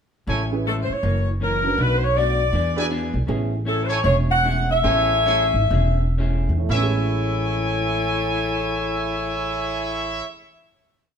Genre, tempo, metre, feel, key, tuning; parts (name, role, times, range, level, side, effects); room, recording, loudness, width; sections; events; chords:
jazz, big band swing; 113-161 BPM; 4/4; swing 63% on 8ths; A major; A4 = 440 Hz
vintage hollow-body jazz guitar; accompaniment; 0.3-10.3 s; F#2 to G#4; -30 LUFS; left 1 dB
bright trumpet section; stabs; 0.3-0.4, 2.8-10.3 s; E4 to G#5; -27 LUFS; right 2 dB
upright bass; bass; 0.3-10.2 s; E1 to E2; -23 LUFS; equal
warm upright piano; accompaniment; 0.5-10.4 s; A2 to B4; -30 LUFS; right 6 dB
clear saxophone section; melody; 0.7-10.2 s; E4 to G#5; -22 LUFS; left 2 dB
moderate stone room reverb, RT60 1.1 s; band playing live in one room; -19 LUFS; side -7 dB against mid
0.3-6.7 A section; 6.7-10.9 final chord
slowing down 3.3-6.7
0.3 Amaj7; 1.0 F#7; 1.8 Bm7; 2.5 E7; 3.3 Amaj7